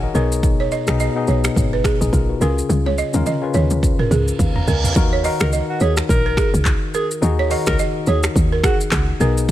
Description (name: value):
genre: afrobeats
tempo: 106 BPM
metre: 4/4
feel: swing 58% on 16ths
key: Eb minor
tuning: A4 = 440 Hz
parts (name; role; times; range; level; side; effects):
- mellow tine electric piano; accompaniment; 0.0-9.5 s; B2 to Bb5; -23 LUFS; left 5 dB; none
- woody log drum bass; bass; 0.0-9.5 s; G#1 to Eb2; -19 LUFS; equal; none
- deep house drum kit; drums; 0.1-9.5 s; finger snaps, handclaps, hi-hat, kick drum, rim click, shaker, toms; -20 LUFS; equal; overdrive
- balafon; riff; 0.2-9.3 s; G#4 to D#5; -24 LUFS; right 7 dB; digital delay
- reverse cymbal; sound effects; 4.3-5.0 s; none; -29 LUFS; right 4 dB; none
- warm alto saxophone; melody; 5.4-8.8 s; Gb4 to Bb4; -26 LUFS; equal; digital delay
room: little or no reverb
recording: none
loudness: -15 LUFS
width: side -13 dB against mid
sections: 0.0-5.0 A section; 5.0-9.5 B section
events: tine electric piano fill 0.0-0.4; drum fill 2.7-5.0; reverse cymbal 4.3-5.0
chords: 0.1 B6; 2.4 Db; 5.0 Ebm